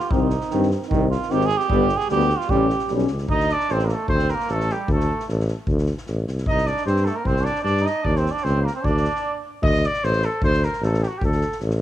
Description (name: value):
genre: balkan folk, Balkan brass band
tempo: 151 BPM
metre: 2/4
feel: swing 54% on 16ths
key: unclear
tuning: A4 = 441 Hz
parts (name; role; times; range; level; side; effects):
- trombone with metal mute; second line; 0.0-9.4 s; G3 to Ab4; -26 LUFS; right 6 dB; cassette tape
- street-band drum kit; percussion; 0.0-11.7 s; kick drum, snare drum; -28 LUFS; equal; cassette tape
- mellow French horn; accompaniment; 0.1-3.1 s; B3 to C#4; -25 LUFS; left 8 dB; cassette tape
- warm euphonium; accompaniment; 0.1-3.0 s; Eb3 to G3; -27 LUFS; right 7 dB; cassette tape
- mellow tuba; bass; 0.1-11.8 s; G1 to G2; -22 LUFS; equal; none
- mellow trumpet; melody; 3.3-11.6 s; F#4 to Eb5; -25 LUFS; equal; cassette tape
room: light reverb, small room ambience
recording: home recording on cassette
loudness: -19 LUFS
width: side -12 dB against mid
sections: 0.0-3.3 A section; 3.3-9.6 B section; 9.6-11.8 B section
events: trombone solo 0.0-3.3; stop 9.2-9.6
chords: 0.1 Cm; 1.7 G; 2.5 A7; 3.3 D5; 6.5 C5; 8.1 Cm9; 8.8 N.C.; 9.6 D5